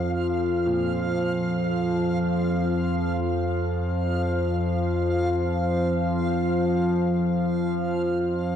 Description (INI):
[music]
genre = dark ambient drone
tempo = free time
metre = none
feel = none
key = unclear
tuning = A4 = 440 Hz
[part]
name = analog drone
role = drone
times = 0.0-8.6 s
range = F2 to F3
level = -22 LUFS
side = equal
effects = chorus
[part]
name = backwards swelling texture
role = texture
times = 0.0-8.6 s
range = F5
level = -34 LUFS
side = right 3 dB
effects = built-in reverb
[part]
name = dark grand piano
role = arpeggios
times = 0.7-8.6 s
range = Bb2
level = -39 LUFS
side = equal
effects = none
[sound]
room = wet huge ambient reverb, RT60 8.4 s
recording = worn, warbling old tape, cassette tape, warbly pitch drift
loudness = -22 LUFS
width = side -9 dB against mid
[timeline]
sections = 0.0-8.6 A section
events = none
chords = none